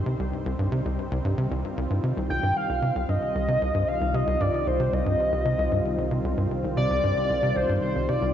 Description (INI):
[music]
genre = ambient, sequencer-driven space music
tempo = 114 BPM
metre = 4/4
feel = straight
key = C minor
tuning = A4 = 439 Hz
[part]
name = lush unison pad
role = sustained chords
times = 0.0-8.3 s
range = Eb3 to C5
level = -31 LUFS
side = equal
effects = chorus
[part]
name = tight sequencer bass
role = riff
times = 0.0-8.3 s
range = C2 to C3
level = -26 LUFS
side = equal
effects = ping-pong delay
[part]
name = analog drone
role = bass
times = 0.1-8.3 s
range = C2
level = -34 LUFS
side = equal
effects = chorus
[part]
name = pulse-width lead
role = melody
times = 2.3-8.3 s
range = C5 to G5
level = -26 LUFS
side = left 1 dB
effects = chorus, cassette tape, ping-pong delay
[sound]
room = wet lush hall reverb, RT60 2.4 s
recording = home recording on cassette, nothing above 7.8 kHz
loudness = -23 LUFS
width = side -10 dB against mid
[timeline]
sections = 0.0-8.3 A section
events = none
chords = 0.0 Cm